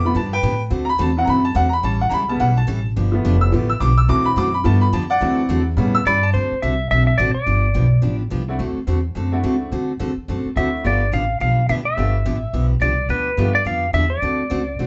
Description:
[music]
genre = country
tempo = 213 BPM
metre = 4/4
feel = swing 59% on 8ths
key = D mixolydian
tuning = A4 = 439 Hz
[part]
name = bright upright piano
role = accompaniment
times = 0.0-6.3, 8.5-13.5 s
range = C#3 to E6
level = -23 LUFS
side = equal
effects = none
[part]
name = upright bass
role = bass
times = 0.0-14.9 s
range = F1 to A2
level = -22 LUFS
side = equal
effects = none
[part]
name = picked steel-string acoustic guitar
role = accompaniment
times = 0.2-14.9 s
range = D3 to A4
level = -27 LUFS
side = equal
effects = none
[part]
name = clean lap steel guitar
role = melody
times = 6.1-8.2, 10.6-14.9 s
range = B4 to F5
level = -23 LUFS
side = equal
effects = none
[sound]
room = moderate studio ambience, RT60 0.5 s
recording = band playing live in one room, nothing above 8.0 kHz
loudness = -19 LUFS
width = mono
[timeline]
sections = 0.0-6.3 A section; 6.3-14.9 B section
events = upright piano solo 0.0-6.3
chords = 0.0 G9; 0.7 D9; 1.8 A9; 3.0 G9; 4.1 D9; 4.7 G9; 5.2 D9; 5.8 A9; 6.3 D9; 7.5 G9; 8.6 D9; 10.8 G9; 14.2 D7

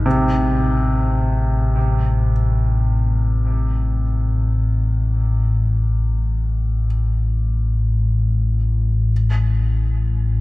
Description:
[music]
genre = dark ambient drone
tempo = free time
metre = none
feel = none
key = A minor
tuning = A4 = 439 Hz
[part]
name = clear baby grand piano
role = arpeggios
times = 0.0-9.1 s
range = B#1 to C3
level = -24 LUFS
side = equal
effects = diffuse ambient delay
[part]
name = deep rumbling drone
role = drone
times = 0.0-10.4 s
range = A1 to A2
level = -17 LUFS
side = left 1 dB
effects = built-in reverb
[sound]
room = wet cathedral reverb, RT60 6.4 s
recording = in a vast, echoing space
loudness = -16 LUFS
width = side -20 dB against mid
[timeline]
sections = 0.1-10.4 A section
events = none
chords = 0.1 Am; 9.1 N.C.

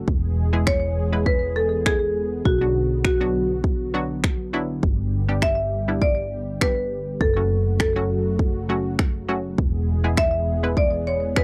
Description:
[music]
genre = dance-pop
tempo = 101 BPM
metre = 4/4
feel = straight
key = unclear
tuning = A4 = 441 Hz
[part]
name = hollow square pluck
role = accompaniment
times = 0.0-11.4 s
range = F#3 to B4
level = -31 LUFS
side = equal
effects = chorus, sidechain pumping
[part]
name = warm analog pad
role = sustained chords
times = 0.0-11.4 s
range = C#3 to G#4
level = -33 LUFS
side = equal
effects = chorus, sidechain pumping
[part]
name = hollow-body short-scale fingered electric bass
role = bass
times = 0.0-11.4 s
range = E1 to B1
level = -28 LUFS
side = equal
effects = sidechain pumping
[part]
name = pop drum kit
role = drums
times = 0.1-11.4 s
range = finger snaps, kick drum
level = -24 LUFS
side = equal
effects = none
[part]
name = marimba with medium hard mallets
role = melody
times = 0.7-11.4 s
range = F#4 to E5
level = -26 LUFS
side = equal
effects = slapback echo
[sound]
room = little or no reverb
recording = dry, close 1970s-style studio recording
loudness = -22 LUFS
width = mono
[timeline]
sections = 0.0-11.4 A section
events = none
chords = 0.1 E; 2.5 Bm; 4.8 G; 7.2 F#m; 9.6 E

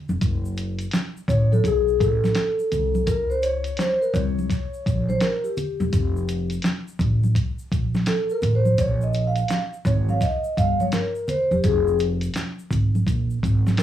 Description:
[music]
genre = hip hop, jazz-hop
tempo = 84 BPM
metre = 4/4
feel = swing 65% on 16ths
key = unclear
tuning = A4 = 442 Hz
[part]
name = upright bass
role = bass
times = 0.1-13.7 s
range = E1 to C#2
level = -23 LUFS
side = equal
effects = none
[part]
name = congas and egg shaker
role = percussion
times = 0.1-13.8 s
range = none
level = -30 LUFS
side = left 2 dB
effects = none
[part]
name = lo-fi sampler-style drum kit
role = drums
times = 0.2-13.8 s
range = hi-hat, kick drum, snare drum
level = -25 LUFS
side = equal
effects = cassette tape
[part]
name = vibraphone with soft mallets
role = accompaniment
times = 1.3-13.8 s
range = G4 to F5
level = -23 LUFS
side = left 1 dB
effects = cassette tape
[sound]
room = light reverb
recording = home recording on cassette, studio ambience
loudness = -20 LUFS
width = side -11 dB against mid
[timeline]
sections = 0.0-13.8 A section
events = vibraphone solo 0.0-13.8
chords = 0.2 Gbm; 1.6 Ammaj7; 3.1 Edim7 (rootless); 5.9 F; 8.8 Edim7 (rootless); 11.6 Fm; 13.1 Absus2

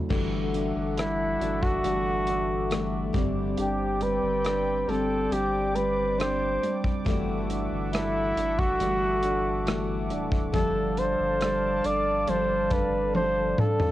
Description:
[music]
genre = pop ballad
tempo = 69 BPM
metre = 4/4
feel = straight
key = unclear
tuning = A4 = 440 Hz
[part]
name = warm concert grand piano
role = accompaniment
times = 0.0-13.9 s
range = D2 to D4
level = -32 LUFS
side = right 7 dB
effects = cassette tape
[part]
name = sweeping resonant pad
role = sustained chords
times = 0.0-13.9 s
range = C4 to D6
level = -34 LUFS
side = left 2 dB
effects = chorus, cassette tape
[part]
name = picked steel-string acoustic guitar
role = arpeggios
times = 0.1-13.9 s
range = G2 to A4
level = -33 LUFS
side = left 7 dB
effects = cassette tape, tape echo
[part]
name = warm sub bass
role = bass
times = 0.1-13.5 s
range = D1 to G1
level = -34 LUFS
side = equal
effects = none
[part]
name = modern studio drum kit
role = drums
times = 0.1-13.9 s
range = crash cymbal, hi-hat, kick drum, rim click, toms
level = -29 LUFS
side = equal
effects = cassette tape
[part]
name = warm flugelhorn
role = melody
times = 1.0-13.9 s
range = E4 to D5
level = -26 LUFS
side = equal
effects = cassette tape
[sound]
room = light reverb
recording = home recording on cassette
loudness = -24 LUFS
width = side -14 dB against mid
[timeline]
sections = 0.1-13.9 A section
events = drum fill 13.1-13.9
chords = 0.1 Dadd9/G; 3.1 Csus2/G; 7.1 Dadd9/G; 10.5 F6/G

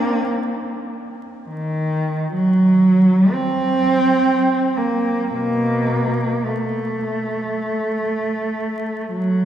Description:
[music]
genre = classical, free, expressive piece for unaccompanied cello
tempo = free time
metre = none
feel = none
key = unclear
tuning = A4 = 442 Hz
[part]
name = warm cello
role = solo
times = 0.0-9.4 s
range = Cb3 to C4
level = -17 LUFS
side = right 1 dB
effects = none
[sound]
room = wet cathedral reverb, RT60 4.3 s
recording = heard from further back in the room, vinyl crackle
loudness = -17 LUFS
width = side -10 dB against mid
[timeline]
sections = 0.0-9.4 A section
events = none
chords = none

